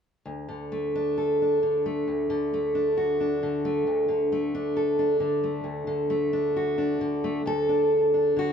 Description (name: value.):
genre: folk, solo fingerstyle acoustic guitar.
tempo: 66 BPM.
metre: 4/4.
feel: rubato.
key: D major.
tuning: A4 = 439 Hz.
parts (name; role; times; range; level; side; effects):
fingerpicked steel-string acoustic guitar; solo; 0.3-8.5 s; D2 to A4; -23 LUFS; equal; none.
room: moderate large studio reverb, RT60 1.1 s.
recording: none.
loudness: -23 LUFS.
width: side -7 dB against mid.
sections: 0.3-7.5 A section; 7.5-8.5 B section.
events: none.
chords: 0.3 D.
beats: | 0.26 1.17 2.08 2.98 | 3.88 4.76 5.65 6.55 | 7.46 8.37.